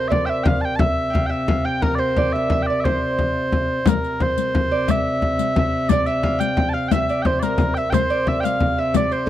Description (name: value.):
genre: medieval dance.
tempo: 118 BPM (dotted quarters).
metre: 6/8.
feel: straight.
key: C mixolydian.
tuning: A4 = 440 Hz.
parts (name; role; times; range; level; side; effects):
mellow small bagpipes; melody; 0.0-9.3 s; Bb4 to A5; -22 LUFS; equal; none.
Celtic harp; second line; 0.0-9.3 s; A4 to G5; -25 LUFS; right 3 dB; none.
warm viola da gamba; drone; 0.0-9.3 s; C3; -26 LUFS; equal; stereo widening.
frame drum; percussion; 0.1-9.3 s; none; -22 LUFS; left 2 dB; none.
riq; percussion; 3.9-9.2 s; none; -23 LUFS; left 19 dB; none.
room: little or no reverb.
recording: dry, close 1970s-style studio recording.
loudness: -18 LUFS.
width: side -12 dB against mid.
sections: 0.0-3.9 A section; 3.9-9.3 A section.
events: none.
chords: none.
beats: 0.29 | 0.81 1.31 | 1.83 2.33 | 2.85 3.35 | 3.86 4.37 | 4.88 5.39 | 5.90 6.41 | 6.91 7.42 | 7.93 8.43 | 8.94.